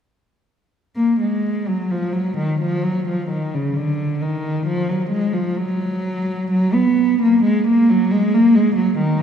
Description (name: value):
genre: classical, baroque-style suite movement for unaccompanied cello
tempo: 65 BPM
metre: 3/4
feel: uneven beats, rubato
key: unclear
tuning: A4 = 440 Hz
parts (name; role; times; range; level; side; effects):
- dark cello; solo; 1.0-9.2 s; Db3 to Cb4; -16 LUFS; equal; none
room: wet church reverb, RT60 3.0 s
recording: heard from further back in the room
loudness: -16 LUFS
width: side -8 dB against mid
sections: 1.0-9.2 A section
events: none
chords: none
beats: | 0.96 1.91 2.84 | 3.76 4.68 5.58 | 6.52 7.45 8.33 | 9.22